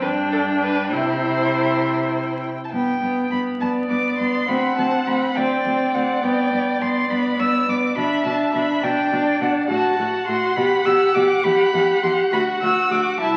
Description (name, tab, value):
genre	quick classical-period movement for string quartet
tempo	68 BPM (dotted quarters)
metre	6/8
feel	straight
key	G major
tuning	A4 = 440 Hz
part	dark violin	melody	0.0-13.4 s	F#5 to E6	-26 LUFS	equal	none
part	warm violin	second line	0.0-13.4 s	A4 to F#5	-28 LUFS	equal	none
part	warm viola	accompaniment	0.0-13.4 s	B3 to G4	-23 LUFS	equal	none
part	rich cello	bass	0.0-13.4 s	C2 to C3	-32 LUFS	equal	none
room	wet recital hall reverb, RT60 1.3 s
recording	very old 78 rpm record, vinyl crackle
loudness	-20 LUFS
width	mono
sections	0.0-2.7 A section; 2.7-13.4 B section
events	none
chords	0.0 G5; 0.9 C; 2.7 G; 4.5 D7; 6.2 G; 8.0 G/B; 9.7 Am6; 10.6 G; 11.4 Em; 12.3 Dadd9